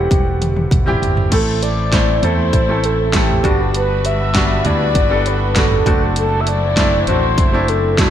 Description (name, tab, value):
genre	piano-driven pop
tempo	99 BPM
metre	4/4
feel	straight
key	unclear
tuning	A4 = 442 Hz
part	mellow horn-like synth lead	melody	0.0-8.1 s	F#4 to E5	-20 LUFS	equal	chorus
part	bright upright piano	accompaniment	0.0-8.1 s	G2 to F#5	-20 LUFS	equal	none
part	modern bright fingered electric bass	bass	0.0-8.1 s	E1 to E2	-19 LUFS	equal	none
part	pop drum kit	drums	0.1-8.1 s	crash cymbal, hi-hat, kick drum, snare drum, toms	-17 LUFS	equal	gated reverb
part	warm symphonic string section	sustained chords	1.3-8.1 s	F#3 to B4	-27 LUFS	left 1 dB	none
room	light reverb, digital ambience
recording	bright 1980s-style digital production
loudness	-13 LUFS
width	side -10 dB against mid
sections	0.0-1.3 A section; 1.3-8.1 B section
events	drum fill 0.1-1.3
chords	0.0 C/E; 1.3 Am; 3.4 Gmaj7; 5.9 D7/F#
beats	0.11 0.71 | 1.32 1.93 2.53 3.14 | 3.75 4.35 4.96 5.56 | 6.17 6.78 7.38 7.99